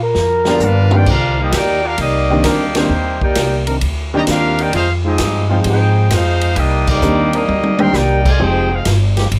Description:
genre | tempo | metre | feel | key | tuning
jazz, big band swing | 131 BPM | 4/4 | swing 68% on 8ths | C minor | A4 = 440 Hz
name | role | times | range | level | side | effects
breathy trombone | melody | 0.0-1.0 s | A#4 | -18 LUFS | equal | none
upright bass | bass | 0.0-9.4 s | F1 to A#2 | -19 LUFS | equal | none
swinging big-band drum kit | drums | 0.1-9.4 s | crash cymbal, hi-hat, kick drum, ride cymbal, snare drum, toms | -23 LUFS | equal | none
warm trumpet section | melody | 0.5-8.9 s | Bb3 to C6 | -21 LUFS | equal | none
bright trombone section | second line | 0.5-8.9 s | D3 to Ab4 | -24 LUFS | equal | none
warm concert grand piano | accompaniment | 0.5-8.7 s | Eb3 to G5 | -21 LUFS | equal | none
mellow trombone section | sustained chords | 0.5-9.3 s | Eb3 to A#4 | -24 LUFS | equal | none
room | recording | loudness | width
light reverb | none | -15 LUFS | mono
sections
0.0-1.1 A section; 1.1-9.4 B section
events
trombone solo 0.0-1.1; drum fill 0.1-1.1, 7.5-7.9; band accent 2.7, 6.8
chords
0.0 G7#9; 1.1 Cm9; 4.7 Fm9; 6.6 Cm9; 8.4 Fm9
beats
0.15 0.61 | 1.07 1.52 1.98 2.44 | 2.90 3.36 3.82 4.28 | 4.73 5.19 5.65 6.11 | 6.57 7.02 7.48 7.94 | 8.40 8.86 9.31

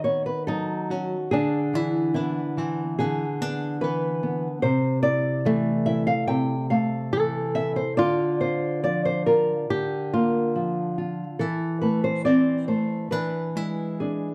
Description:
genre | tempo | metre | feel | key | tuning
romantic duo for nylon-string guitar and classical guitar | 71 BPM | 4/4 | rubato | A minor | A4 = 440 Hz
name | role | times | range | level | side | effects
flamenco guitar | melody | 0.0-14.3 s | A3 to A4 | -30 LUFS | equal | none
nylon-string guitar | accompaniment | 0.0-14.3 s | C3 to G5 | -26 LUFS | equal | none
room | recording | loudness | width
light reverb | close, detailed microphones | -25 LUFS | mono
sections
0.0-14.3 A section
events
none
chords
0.0 B7/D#; 1.3 E7/D; 4.6 Am/C; 8.0 Bb/D; 11.4 Am/E; 13.1 E7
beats
0.48 | 1.32 2.16 2.99 3.83 | 4.64 5.46 6.29 7.13 | 7.99 8.85 9.70 10.55 | 11.40 12.26 13.12 14.01

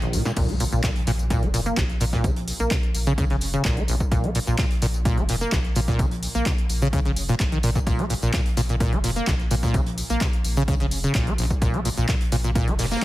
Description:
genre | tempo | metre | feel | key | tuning
acid house | 128 BPM | 4/4 | straight | Bb minor pentatonic | A4 = 440 Hz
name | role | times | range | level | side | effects
acid bass, saw | riff | 0.0-13.0 s | Bb1 to Bb3 | -24 LUFS | equal | tube saturation, analog chorus, sidechain pumping, digital delay
warm sub bass | bass | 0.0-13.0 s | F1 to Bb1 | -27 LUFS | equal | tube saturation, sidechain pumping
punchy analog drum machine | drums | 0.0-13.0 s | crash cymbal, handclaps, hi-hat, snare drum, tambourine | -30 LUFS | equal | overdrive
loose indie drum kit | drums | 0.1-13.0 s | hi-hat, snare drum, tambourine | -40 LUFS | equal | none
electronic kick drum | drums | 0.4-13.0 s | none | -24 LUFS | equal | overdrive
impact | sound effects | 0.4-2.2 s | none | -33 LUFS | equal | none
room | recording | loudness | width
small room reverb | heavily compressed radio sound | -20 LUFS | side -16 dB against mid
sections
0.4-13.0 A section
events
break 0.0-0.4; drum fill 0.0-0.4; drop 0.4-13.0; impact 0.4-2.2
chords
0.4 Bb5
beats
| 0.37 0.84 1.30 1.77 | 2.24 2.71 3.18 3.65 | 4.12 4.59 5.05 5.52 | 5.99 6.46 6.93 7.40 | 7.87 8.34 8.80 9.27 | 9.74 10.21 10.68 11.15 | 11.62 12.09 12.55 13.02

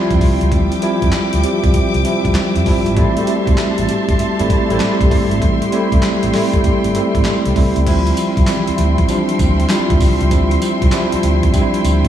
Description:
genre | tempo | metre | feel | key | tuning
R&B, new jack swing | 98 BPM | 4/4 | swing 66% on 16ths | D minor | A4 = 441 Hz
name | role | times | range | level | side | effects
tine electric piano | accompaniment | 0.0-12.1 s | E3 to G4 | -16 LUFS | equal | fast stereo tremolo, slapback echo
warm symphonic string section | sustained chords | 0.0-12.1 s | F3 to D6 | -23 LUFS | left 2 dB | none
vintage muted fingered electric bass | bass | 0.1-12.1 s | G1 to F2 | -18 LUFS | equal | none
boom bap sampler-style drum kit | drums | 0.1-12.1 s | crash cymbal, handclaps, hi-hat, kick drum, snare drum, tambourine | -18 LUFS | equal | none
room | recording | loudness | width
moderate concert hall reverb, RT60 2.0 s | big arena sound, small room ambience | -13 LUFS | side -10 dB against mid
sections
0.0-7.9 A section; 7.9-12.1 B section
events
none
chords
0.0 Dm11; 3.0 Am7; 7.9 Dm11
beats
| 0.52 1.13 1.74 2.35 | 2.97 3.58 4.19 4.80 | 5.42 6.03 6.64 7.25 | 7.87 8.48 9.09 9.70 | 10.31 10.93 11.54

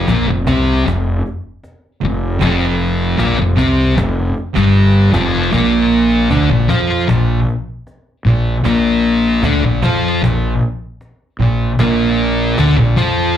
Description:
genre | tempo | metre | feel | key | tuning
stoner and doom metal | 77 BPM | 4/4 | straight | unclear | A4 = 440 Hz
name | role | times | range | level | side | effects
thick fuzz guitar | riff | 0.0-13.4 s | F2 to F4 | -15 LUFS | left 4 dB | distortion
thick fuzz guitar | riff | 0.0-13.4 s | F2 to F4 | -18 LUFS | right 8 dB | distortion
fuzz fingered electric bass | bass | 0.0-13.3 s | F1 to F2 | -17 LUFS | equal | overdrive
cajon | drums | 0.1-13.2 s | none | -27 LUFS | equal | none
room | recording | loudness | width
light reverb | live gig heard through the venue's PA, club reverb | -12 LUFS | side -10 dB against mid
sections
0.0-13.4 A section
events
none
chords
0.0 F5; 5.5 Bb5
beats
0.08 0.85 1.63 | 2.40 3.18 3.96 4.74 | 5.52 6.30 7.08 7.86 | 8.65 9.43 10.22 11.00 | 11.79 12.57

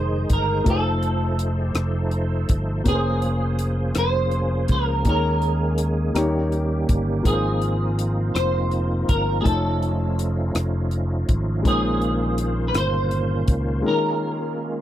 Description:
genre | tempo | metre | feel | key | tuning
slow gospel | 55 BPM (dotted quarters) | 6/8 | straight | Ab major | A4 = 440 Hz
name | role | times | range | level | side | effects
clean electric guitar | melody | 0.0-14.8 s | Ab4 to C5 | -26 LUFS | right 1 dB | ensemble chorus
warm baby grand piano | accompaniment | 0.0-14.8 s | Ab2 to G5 | -27 LUFS | left 2 dB | none
bright tonewheel organ | sustained chords | 0.0-14.8 s | Eb3 to C5 | -28 LUFS | right 2 dB | fast rotary speaker, chorus vibrato
fingered electric bass | bass | 0.0-13.8 s | F1 to Eb2 | -23 LUFS | equal | none
crisp fusion drum kit | drums | 0.3-13.6 s | hi-hat, kick drum, rim click | -22 LUFS | equal | none
room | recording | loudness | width
little or no reverb | dry, close 1970s-style studio recording | -20 LUFS | side -12 dB against mid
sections
0.0-14.8 A section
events
none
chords
0.0 Abmaj7; 0.7 F7; 2.9 Bbm9/F; 5.1 Eb7sus4; 6.2 Eb7; 7.3 Ab69; 9.4 F7alt; 11.6 Bbm11; 13.8 Eb7sus4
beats
| 0.66 1.76 | 2.86 3.96 | 5.05 6.15 | 7.25 8.35 | 9.45 10.55 | 11.64 12.74 | 13.84

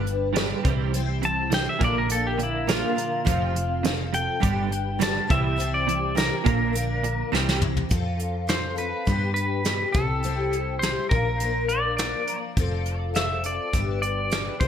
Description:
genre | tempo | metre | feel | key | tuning
folk rock and heartland rock | 103 BPM | 4/4 | straight | unclear | A4 = 441 Hz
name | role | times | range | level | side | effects
picked twelve-string acoustic guitar | accompaniment | 0.0-14.7 s | C3 to C5 | -30 LUFS | left 5 dB | ensemble chorus
twelve-string electric guitar | riff | 0.0-7.9 s | F2 to Bb3 | -29 LUFS | right 10 dB | ensemble chorus
hollow-body short-scale picked electric bass | bass | 0.0-14.7 s | F1 to G2 | -28 LUFS | equal | none
soft brush drum kit | drums | 0.1-14.7 s | hi-hat, kick drum, snare drum, toms | -26 LUFS | equal | gated reverb
pedal steel guitar | melody | 1.3-14.7 s | E4 to A5 | -27 LUFS | left 1 dB | ping-pong delay
room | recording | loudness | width
light reverb | bright 1980s-style digital production | -22 LUFS | side -8 dB against mid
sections
0.0-7.9 A section; 7.9-14.7 B section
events
pedal steel guitar solo 0.0-7.9; drum fill 7.3-7.9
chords
0.0 G; 0.7 C; 1.8 Bb; 3.3 F; 4.4 G; 5.3 C; 6.5 Bb; 7.3 C; 7.9 F; 9.1 G; 10.0 C; 11.1 Bb; 12.6 F; 13.7 G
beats
0.36 | 0.94 1.52 2.11 2.69 | 3.27 3.85 4.43 5.01 | 5.59 6.17 6.75 7.33 | 7.92 8.50 9.08 9.66 | 10.24 10.82 11.41 11.99 | 12.57 13.15 13.74 14.32

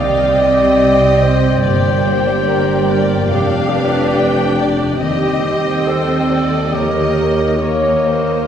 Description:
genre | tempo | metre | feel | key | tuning
classical, slow romantic movement for symphony orchestra | 71 BPM | 4/4 | rubato | G minor | A4 = 440 Hz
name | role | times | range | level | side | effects
warm studio violin section | melody | 0.0-8.5 s | Bb4 to G5 | -22 LUFS | left 4 dB | none
mellow clarinet | second line | 0.0-8.5 s | Bb3 to D5 | -17 LUFS | equal | none
warm studio violin section | second line | 0.0-8.5 s | Db5 to G5 | -22 LUFS | left 2 dB | none
rich studio viola section | accompaniment | 0.0-8.5 s | Bb3 to Bb4 | -19 LUFS | right 1 dB | none
concert harp | arpeggios | 0.0-8.5 s | F2 to Eb6 | -24 LUFS | left 3 dB | none
rich studio double bass section | bass | 0.0-8.5 s | F1 to Eb2 | -20 LUFS | right 2 dB | none
warm studio cello section | bass | 0.0-8.5 s | Eb2 to C3 | -22 LUFS | right 3 dB | none
room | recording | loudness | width
wet concert hall reverb, RT60 2.3 s | heard from further back in the room | -12 LUFS | side -8 dB against mid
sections
0.0-8.5 A section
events
none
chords
0.0 Cm; 1.6 Gm; 3.3 G7/F; 5.0 Cm/Eb; 6.7 Eb7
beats
0.81 | 1.64 2.48 3.32 4.16 | 5.01 5.86 6.72 7.62

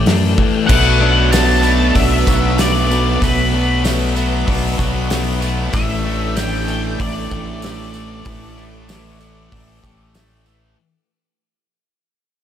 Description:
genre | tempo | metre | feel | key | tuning
rock, shoegaze and dream pop | 95 BPM | 4/4 | straight | unclear | A4 = 441 Hz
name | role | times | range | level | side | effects
octave-fuzz lead guitar | melody | 0.0-10.1 s | B4 to A5 | -21 LUFS | left 3 dB | distortion, tape echo
string machine, full ensemble | sustained chords | 0.0-10.8 s | A4 to D6 | -29 LUFS | equal | ensemble chorus
direct-recorded clean electric guitar | arpeggios | 0.0-10.8 s | E3 to G4 | -27 LUFS | left 7 dB | analog chorus, tape echo
electric guitar through a small old amp | riff | 0.0-10.8 s | A2 to F#4 | -25 LUFS | right 13 dB | reverse reverb
thick fuzz guitar | riff | 0.0-10.8 s | A2 to B3 | -23 LUFS | left 10 dB | distortion, lush chorus
growling fingered electric bass | bass | 0.0-10.7 s | A1 to F#2 | -19 LUFS | equal | overdrive
loose indie drum kit | drums | 0.1-10.3 s | crash cymbal, hi-hat, kick drum, snare drum | -20 LUFS | equal | none
biting overdriven guitar | riff | 0.7-10.8 s | A2 to B3 | -24 LUFS | right 1 dB | none
tambourine | percussion | 0.7-10.6 s | none | -31 LUFS | right 9 dB | none
room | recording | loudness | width
studio reverb | none | -13 LUFS | side -10 dB against mid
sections
0.7-10.8 A section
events
fade-out 0.7-10.8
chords
0.0 A7sus4; 0.7 Bm7; 5.7 A7sus4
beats
0.06 | 0.69 1.32 1.96 2.59 | 3.22 3.85 4.48 5.11 | 5.74 6.37 7.00 7.63 | 8.26 8.89 9.52 10.15

